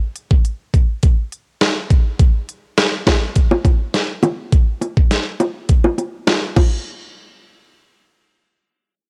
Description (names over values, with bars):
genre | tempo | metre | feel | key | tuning
dancehall | 103 BPM | 4/4 | straight | none | none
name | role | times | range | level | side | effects
pop drum kit | drums | 0.2-6.7 s | crash cymbal, hi-hat, kick drum, rim click, snare drum | -17 LUFS | equal | cassette tape
bongos | percussion | 3.1-6.8 s | none | -20 LUFS | equal | none
room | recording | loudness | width
digital ambience | home recording on cassette | -17 LUFS | mono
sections
0.0-6.9 A section; 6.9-9.1 B section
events
none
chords
none